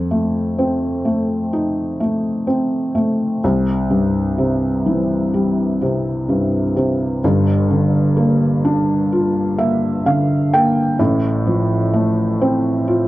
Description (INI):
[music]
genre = folk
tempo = 63 BPM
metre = 4/4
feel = straight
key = unclear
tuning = A4 = 440 Hz
[part]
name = felt-muted upright piano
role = solo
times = 0.0-13.1 s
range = G1 to G5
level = -15 LUFS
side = equal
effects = none
[sound]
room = light reverb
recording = worn, warbling old tape, cassette tape, warbly pitch drift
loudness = -15 LUFS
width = side -16 dB against mid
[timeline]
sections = 0.0-3.4 A section; 3.4-13.1 B section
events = none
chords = 0.0 F7; 3.4 C; 7.2 Gm7; 11.0 F/A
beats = 0.57 1.52 2.48 | 3.43 4.38 5.33 6.28 | 7.22 8.17 9.11 10.05 | 11.00 11.94 12.88